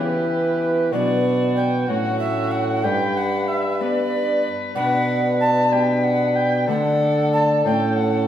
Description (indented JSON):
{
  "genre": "classical",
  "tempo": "62 BPM (dotted quarters)",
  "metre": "6/8",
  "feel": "straight",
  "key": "unclear",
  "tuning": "A4 = 444 Hz",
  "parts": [
    { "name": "dark violin", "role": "melody", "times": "0.0-8.3 s", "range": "F#4 to B4", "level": "-30 LUFS", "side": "left 4 dB", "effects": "none" },
    { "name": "mellow tenor recorder", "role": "second line", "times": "0.0-8.3 s", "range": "B4 to A5", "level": "-23 LUFS", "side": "right 1 dB", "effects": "none" },
    { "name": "Celtic harp", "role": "accompaniment", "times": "0.0-8.3 s", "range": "G2 to B4", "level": "-27 LUFS", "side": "left 2 dB", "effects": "none" },
    { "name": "dark bassoon", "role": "accompaniment", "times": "0.0-8.3 s", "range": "B3 to D4", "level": "-24 LUFS", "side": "left 1 dB", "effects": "none" },
    { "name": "clear trombone", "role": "bass", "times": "0.0-8.3 s", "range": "G2 to E3", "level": "-22 LUFS", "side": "right 1 dB", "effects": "none" }
  ],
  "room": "wet stone room reverb, RT60 1.3 s",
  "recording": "heard from further back in the room",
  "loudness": "-18 LUFS",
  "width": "side -10 dB against mid",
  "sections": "0.0-8.3 A section",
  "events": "none",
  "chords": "0.0 Em; 0.9 Bm; 1.9 F#m/A; 2.8 G; 4.8 Bm; 5.7 G/B; 6.7 D; 7.6 A"
}